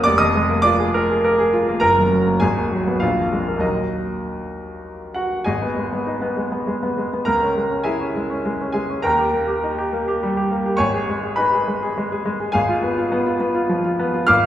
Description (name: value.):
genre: classical, virtuoso piano study.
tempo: 101 BPM.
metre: 3/4.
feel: rubato.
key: Eb minor, G# minor from 5.5 s.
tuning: A4 = 440 Hz.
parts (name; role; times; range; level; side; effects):
clear baby grand piano; solo; 0.0-14.5 s; F1 to F6; -18 LUFS; equal; none.
room: wet recital hall reverb, RT60 1.6 s.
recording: heard from further back in the room.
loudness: -18 LUFS.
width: side -12 dB against mid.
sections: 0.0-5.5 A section; 5.5-14.5 B section.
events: none.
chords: 0.1 Bb7/F; 1.8 Gb; 2.4 Abm7; 3.0 Bb5; 3.6 Ebm; 5.5 G#m; 7.3 C#m; 9.0 D#; 10.8 G#m; 12.5 Fdim/Ab.